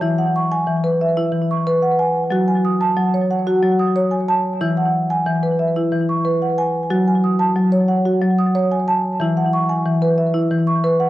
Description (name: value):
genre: world meditative, meditative tuned percussion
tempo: 183 BPM (eighths)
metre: 7/8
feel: straight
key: unclear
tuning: A4 = 441 Hz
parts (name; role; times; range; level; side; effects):
- marimba with medium mallets; solo; 0.0-11.1 s; E3 to D#6; -16 LUFS; equal; cassette tape, tape echo
room: wet small room reverb, RT60 0.5 s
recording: home recording on cassette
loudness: -16 LUFS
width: side -15 dB against mid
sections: 0.0-11.1 A section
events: none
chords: 0.0 E; 2.3 F#m; 4.6 E; 6.9 F#m; 9.2 E